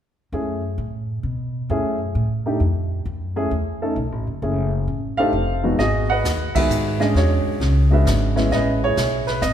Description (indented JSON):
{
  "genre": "jazz piano trio",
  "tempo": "132 BPM",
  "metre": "3/4",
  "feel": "swing 67% on 8ths",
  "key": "E major",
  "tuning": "A4 = 440 Hz",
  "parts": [
    { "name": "warm baby grand piano", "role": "melody", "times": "0.3-9.5 s", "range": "E2 to F#5", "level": "-21 LUFS", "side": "equal", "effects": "none" },
    { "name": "upright bass", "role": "bass", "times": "0.3-9.5 s", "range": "F1 to B2", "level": "-21 LUFS", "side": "equal", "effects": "none" },
    { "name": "jazz brush drum kit", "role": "drums", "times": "5.8-9.5 s", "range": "brushed snare drum, hi-hat, kick drum, ride cymbal, snare drum", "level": "-28 LUFS", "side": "left 2 dB", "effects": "none" }
  ],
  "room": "moderate concert hall reverb, RT60 1.9 s",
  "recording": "recorded in a church or concert hall",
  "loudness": "-18 LUFS",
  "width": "side -10 dB against mid",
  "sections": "0.3-5.8 A section; 5.8-9.5 B section",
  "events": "band accent 6.5",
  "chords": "0.3 F#m7; 1.2 N.C.; 1.7 F#m7; 2.6 N.C.; 3.1 F#m7; 4.0 B5; 4.4 F#m7; 5.3 F7; 5.8 Emaj9; 7.2 E13; 8.5 Amaj9"
}